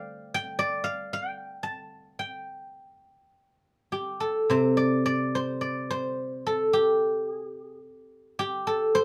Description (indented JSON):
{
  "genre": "chinese traditional, Chinese solo plucked strings",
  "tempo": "51-57 BPM",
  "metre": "2/4",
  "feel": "rubato",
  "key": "G shang mode",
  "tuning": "A4 = 439 Hz",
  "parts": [
    { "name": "guzheng", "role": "solo", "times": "0.0-9.0 s", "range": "C3 to A5", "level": "-28 LUFS", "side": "equal", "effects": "none" }
  ],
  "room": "moderate studio ambience, RT60 0.5 s",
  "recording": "band playing live in one room",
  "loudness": "-28 LUFS",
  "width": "mono",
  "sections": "0.0-4.5 A section; 4.5-9.0 B section",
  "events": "none",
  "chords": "none"
}